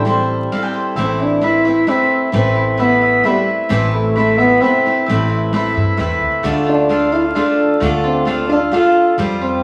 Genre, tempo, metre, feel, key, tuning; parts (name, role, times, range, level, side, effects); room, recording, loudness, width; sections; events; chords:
folk; 131 BPM; 3/4; straight; A minor; A4 = 440 Hz
mellow French horn; second line; 0.0-9.6 s; G3 to F4; -18 LUFS; equal
picked steel-string acoustic guitar; accompaniment; 0.0-9.6 s; A2 to C5; -22 LUFS; equal
mandolin; arpeggios; 0.0-9.6 s; G3 to G5; -21 LUFS; equal
upright bass; bass; 0.0-9.6 s; A1 to G2; -25 LUFS; equal
wet large studio reverb, RT60 0.9 s; vinyl crackle; -15 LUFS; mono
1.0-9.6 A section
French horn solo 1.0-9.6
0.0 Am7; 1.0 Amadd9; 6.4 Dm